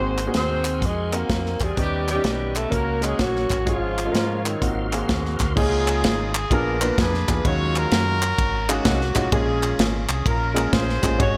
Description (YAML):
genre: uptempo gospel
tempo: 127 BPM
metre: 4/4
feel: swing 65% on 8ths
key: Db major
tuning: A4 = 440 Hz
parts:
  - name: breathy tenor saxophone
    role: melody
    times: 0.0-5.0 s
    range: Eb3 to C4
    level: -30 LUFS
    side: equal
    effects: slapback echo
  - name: warm horn section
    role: melody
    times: 0.0-11.4 s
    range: Gb3 to Db5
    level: -29 LUFS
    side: equal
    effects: slapback echo
  - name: warm grand piano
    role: accompaniment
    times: 0.0-11.4 s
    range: Ab2 to F5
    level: -29 LUFS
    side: equal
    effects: none
  - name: bright tonewheel organ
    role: sustained chords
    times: 0.0-5.6 s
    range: Gb4 to Db6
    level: -39 LUFS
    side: equal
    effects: fast rotary speaker, chorus vibrato
  - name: deep dub fingered electric bass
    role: bass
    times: 0.0-11.4 s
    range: Ab1 to Ab2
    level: -29 LUFS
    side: equal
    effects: none
  - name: modern studio drum kit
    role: drums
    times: 0.2-11.3 s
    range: crash cymbal, hi-hat, kick drum, ride cymbal, snare drum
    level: -26 LUFS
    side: equal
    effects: none
  - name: group handclap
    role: percussion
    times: 0.2-11.1 s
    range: none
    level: -30 LUFS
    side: equal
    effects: none
room: small room ambience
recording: none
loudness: -22 LUFS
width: mono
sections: 0.0-5.6 A section; 5.6-11.4 B section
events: none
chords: 0.0 Ab9; 1.8 Ebaug7; 2.7 Gb/Db; 3.7 Db/Ab; 4.6 Ab13; 5.6 Db69; 6.5 Bb7b9; 7.4 Ebm11; 9.3 Bbm7